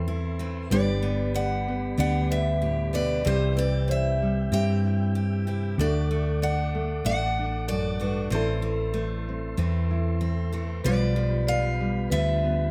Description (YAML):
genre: acoustic folk duo or small band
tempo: 95 BPM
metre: 4/4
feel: straight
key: unclear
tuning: A4 = 445 Hz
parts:
  - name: picked steel-string acoustic guitar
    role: melody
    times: 0.0-12.7 s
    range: C5 to G5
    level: -32 LUFS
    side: equal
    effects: none
  - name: marimba with soft mallets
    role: second line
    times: 0.0-12.7 s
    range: G4 to E5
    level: -36 LUFS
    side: equal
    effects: none
  - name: nylon-string guitar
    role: accompaniment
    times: 0.0-12.7 s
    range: D2 to A4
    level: -35 LUFS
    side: equal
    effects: none
  - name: mellow tonewheel organ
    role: sustained chords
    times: 0.0-12.7 s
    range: F4 to D6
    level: -41 LUFS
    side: equal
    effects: slow rotary speaker
  - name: picked steel-string acoustic guitar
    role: arpeggios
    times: 0.0-12.7 s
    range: E3 to G4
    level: -36 LUFS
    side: equal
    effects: none
  - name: hollow-body short-scale fingered electric bass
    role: bass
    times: 0.0-12.7 s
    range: G1 to G2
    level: -28 LUFS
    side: equal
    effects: none
room: moderate large studio reverb, RT60 1.4 s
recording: none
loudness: -26 LUFS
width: mono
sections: 0.0-12.7 A section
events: none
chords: 0.0 Am; 0.7 G; 3.3 C; 5.8 D; 8.3 Am; 10.8 G7/B